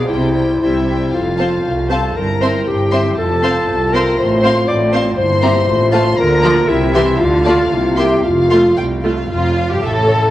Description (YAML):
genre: quick classical-period movement for symphony orchestra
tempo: 118 BPM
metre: 2/4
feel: rubato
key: F major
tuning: A4 = 440 Hz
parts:
  - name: clear chamber violin section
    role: melody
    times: 0.0-10.3 s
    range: F4 to D6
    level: -24 LUFS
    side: left 3 dB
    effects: none
  - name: clear clarinet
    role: second line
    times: 0.0-8.8 s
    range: E4 to D5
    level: -17 LUFS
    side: left 1 dB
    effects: none
  - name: warm chamber violin section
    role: second line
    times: 0.0-10.2 s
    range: C5 to C6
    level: -23 LUFS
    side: left 1 dB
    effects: none
  - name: rich studio viola section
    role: accompaniment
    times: 0.0-10.3 s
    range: E3 to C5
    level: -20 LUFS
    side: right 1 dB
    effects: none
  - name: warm chamber cello section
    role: bass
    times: 0.0-10.3 s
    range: C2 to D3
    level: -21 LUFS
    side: right 1 dB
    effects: none
  - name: rich studio double bass section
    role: bass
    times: 0.1-10.3 s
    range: F1 to D2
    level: -21 LUFS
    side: right 2 dB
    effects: none
  - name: mellow French horn section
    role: sustained chords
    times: 1.1-9.0 s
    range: G3 to A4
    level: -20 LUFS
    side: left 1 dB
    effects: none
room: wet concert hall reverb, RT60 1.8 s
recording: worn, warbling old tape, cassette tape, warbly pitch drift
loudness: -12 LUFS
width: side -14 dB against mid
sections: 0.0-1.1 A section; 1.1-9.3 B section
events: none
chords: 0.1 C; 1.1 F; 2.2 C7/G; 3.2 F; 4.2 F/A; 5.2 C7/G; 5.7 F/A; 6.2 Bb/D; 6.7 C; 7.2 Dm; 7.7 C7; 8.3 F; 9.3 Fsus2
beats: | 0.08 0.61 | 1.13 1.65 | 2.16 2.67 | 3.17 3.67 | 4.18 4.68 | 5.18 5.68 | 6.18 6.69 | 7.21 7.73 | 8.26 8.79 | 9.32 9.83